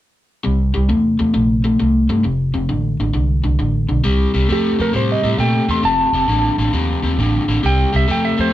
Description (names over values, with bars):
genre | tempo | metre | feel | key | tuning
electric blues shuffle | 134 BPM | 4/4 | swing 67% on 8ths | unclear | A4 = 445 Hz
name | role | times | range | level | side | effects
overdriven electric guitar | riff | 0.4-8.5 s | F2 to A3 | -18 LUFS | left 2 dB | none
vintage muted fingered electric bass | bass | 0.5-8.5 s | F1 to Bb2 | -18 LUFS | right 1 dB | none
electric slide guitar | melody | 4.5-8.5 s | G4 to C6 | -19 LUFS | right 2 dB | tape echo
room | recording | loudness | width
moderate small room reverb, RT60 0.6 s | band playing live in one room | -14 LUFS | side -13 dB against mid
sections
0.4-4.0 A section; 4.0-8.5 B section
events
electric slide guitar solo 4.0-8.5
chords
0.4 C7; 2.2 F; 4.0 C5; 5.8 F7; 7.6 C